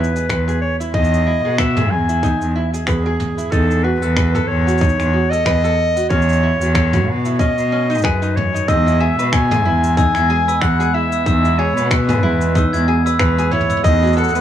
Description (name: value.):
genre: folktronica.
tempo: 93 BPM.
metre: 4/4.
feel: swing 56% on 16ths.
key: E major.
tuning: A4 = 441 Hz.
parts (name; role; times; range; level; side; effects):
clear clarinet; melody; 0.0-14.4 s; G#4 to G#5; -20 LUFS; equal; tape echo.
tenor ukulele; arpeggios; 0.0-14.4 s; C#4 to B4; -24 LUFS; equal; low-pass filter, tape echo.
vintage brush drum kit; drums; 0.0-14.4 s; cabasa, finger snaps, toms; -25 LUFS; right 1 dB; none.
rich cello; bass; 0.3-14.4 s; E2 to B2; -17 LUFS; equal; none.
electronic kick drum; drums; 0.3-14.0 s; none; -18 LUFS; equal; none.
glockenspiel with soft plastic mallets; second line; 8.7-14.0 s; B5 to G#6; -23 LUFS; left 1 dB; digital delay.
warm analog pad; sustained chords; 8.7-14.4 s; G#3 to F#4; -25 LUFS; right 1 dB; chorus.
room: little or no reverb.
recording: none.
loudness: -14 LUFS.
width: side -10 dB against mid.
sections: 0.0-8.7 A section; 8.7-14.4 B section.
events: none.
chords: 0.0 Emaj7; 3.5 B7/E; 6.1 F#m7/E; 7.4 B69; 8.7 Emaj7; 13.8 B7/E.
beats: 0.30 | 0.94 1.59 2.23 2.88 | 3.52 4.17 4.81 5.46 | 6.10 6.75 7.39 8.04 | 8.68 9.33 9.97 10.62 | 11.27 11.91 12.55 13.20 | 13.85.